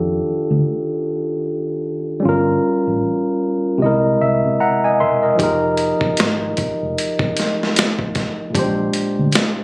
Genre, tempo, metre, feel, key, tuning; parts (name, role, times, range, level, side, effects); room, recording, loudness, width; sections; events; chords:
R&B, neo-soul; 76 BPM; 4/4; swing 58% on 16ths; A4 = 438 Hz
barky tine electric piano; accompaniment; 0.0-9.6 s; Bb2 to C6; -17 LUFS; equal
vintage muted fingered electric bass; bass; 0.0-9.3 s; E1 to C3; -22 LUFS; equal
boom bap sampler-style drum kit; drums; 5.4-9.6 s; hi-hat, kick drum, snare drum; -19 LUFS; equal
moderate small room reverb, RT60 0.5 s; recorded on a phone in the room, studio reverb, compression, faint mains hum; -16 LUFS; side -26 dB against mid
0.0-9.6 A section
tine electric piano fill 3.8-5.4
0.0 Ebmaj9#11; 2.2 Gm7b5; 3.8 C7alt; 5.4 Fm11; 8.5 Bb13